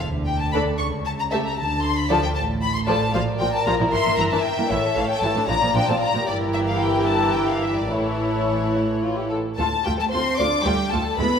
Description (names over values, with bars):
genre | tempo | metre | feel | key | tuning
quick classical-period movement for string orchestra | 76 BPM (dotted quarters) | 6/8 | rubato | D minor from 3.1 s | A4 = 440 Hz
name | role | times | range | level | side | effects
clear studio violin section | melody | 0.0-11.4 s | C#5 to D6 | -24 LUFS | left 4 dB | none
clear studio double bass section | bass | 0.0-11.3 s | G1 to D2 | -29 LUFS | right 2 dB | none
warm studio cello section | bass | 0.0-11.4 s | G2 to D4 | -28 LUFS | right 1 dB | none
dark studio violin section | second line | 0.5-11.4 s | E4 to E5 | -25 LUFS | left 1 dB | none
warm studio viola section | accompaniment | 0.5-11.3 s | E3 to G4 | -26 LUFS | right 1 dB | none
room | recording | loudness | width
wet scoring stage reverb, RT60 1.6 s | minimal, uncompressed stereo recording | -19 LUFS | side -7 dB against mid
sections
0.0-9.6 A section; 9.6-11.4 B section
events
none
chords
0.0 D5; 0.8 A7/C#; 1.6 Dm; 3.1 Bb; 3.9 Edim/G; 4.7 A; 5.5 Bb; 6.3 Edim/G; 7.9 A; 9.6 Dm